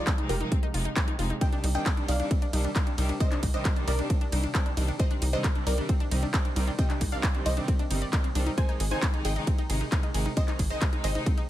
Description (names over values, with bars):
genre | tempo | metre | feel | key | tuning
uplifting trance | 134 BPM | 4/4 | straight | C minor | A4 = 441 Hz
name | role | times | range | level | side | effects
wide unison pluck | melody | 0.0-11.5 s | F4 to Ab5 | -36 LUFS | equal | sidechain pumping, dub echo
clear symphonic string section | sustained chords | 0.0-11.3 s | C3 to Eb4 | -34 LUFS | equal | sidechain pumping
wide unison pluck | arpeggios | 0.1-11.4 s | C4 to D5 | -36 LUFS | left 2 dB | sidechain pumping, dub echo
electronic kick drum | drums | 0.1-11.4 s | none | -26 LUFS | equal | overdrive
house drum kit | drums | 0.1-11.5 s | handclaps, hi-hat, ride cymbal | -35 LUFS | right 1 dB | overdrive
tight sequencer bass | bass | 0.3-11.2 s | F1 to C2 | -28 LUFS | equal | sidechain pumping
room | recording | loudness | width
little or no reverb | none | -25 LUFS | side -13 dB against mid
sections
0.0-11.5 A section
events
none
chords
0.0 Fm7; 1.4 Cmadd9; 8.6 Ab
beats
0.07 0.52 0.96 | 1.41 1.86 2.31 2.76 | 3.20 3.65 4.10 4.55 | 5.00 5.44 5.89 6.34 | 6.79 7.23 7.68 8.13 | 8.58 9.03 9.47 9.92 | 10.37 10.82 11.26